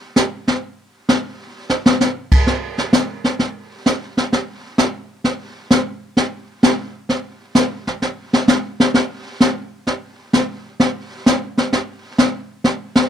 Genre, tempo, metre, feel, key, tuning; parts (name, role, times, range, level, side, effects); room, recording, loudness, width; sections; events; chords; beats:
jazz; 130 BPM; 4/4; swing 68% on 8ths
jazz brush drum kit; drums; 0.2-13.1 s; brushed snare drum, crash cymbal, hi-hat, kick drum, snare drum; -14 LUFS; equal
little or no reverb; -16 LUFS; side -9 dB against mid
0.0-2.5 A section; 2.5-13.1 B section
drum fill 1.5-2.0
0.16 | 0.62 1.08 1.55 2.01 | 2.47 2.93 3.40 3.86 | 4.32 4.78 5.25 5.71 | 6.17 6.63 7.10 7.56 | 8.02 8.48 8.95 9.41 | 9.87 10.33 10.79 11.26 | 11.72 12.18 12.64